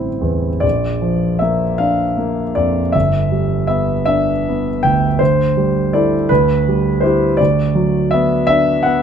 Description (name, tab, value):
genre	classical, impressionist solo piano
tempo	53 BPM (dotted quarters)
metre	6/8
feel	uneven beats, rubato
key	unclear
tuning	A4 = 438 Hz
part	warm concert grand piano	solo	0.0-9.0 s	G1 to G5	-13 LUFS	equal	none
room	light reverb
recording	close, detailed microphones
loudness	-13 LUFS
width	side -8 dB against mid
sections	0.0-9.0 A section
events	none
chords	0.0 Am7; 0.6 Bb; 2.9 G6; 5.2 D11; 6.3 D13sus4; 7.4 Bm/D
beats	| 0.64 1.79 | 2.95 4.07 | 5.20 6.29 | 7.39 8.50